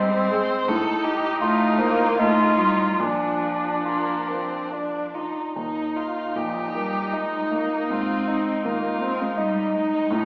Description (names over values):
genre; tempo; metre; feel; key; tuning
classical, slow romantic movement for piano quartet; 68-85 BPM; 3/4; rubato; unclear; A4 = 440 Hz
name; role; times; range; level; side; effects
muted violin; melody; 0.0-10.2 s; Bb3 to C5; -30 LUFS; equal; none
muted cello; second line; 0.0-10.2 s; F3 to C4; -29 LUFS; equal; none
muted viola; accompaniment; 0.0-10.2 s; C4 to F4; -30 LUFS; equal; none
warm grand piano; accompaniment; 0.0-10.2 s; Eb2 to Eb5; -29 LUFS; equal; none
room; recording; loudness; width
wet recital hall reverb, RT60 1.3 s; recorded in a church or concert hall, small speaker sound; -23 LUFS; mono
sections
0.0-10.2 A section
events
none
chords
0.0 Ab; 0.7 F7/A; 3.0 Bb; 5.6 Eb; 7.9 Ab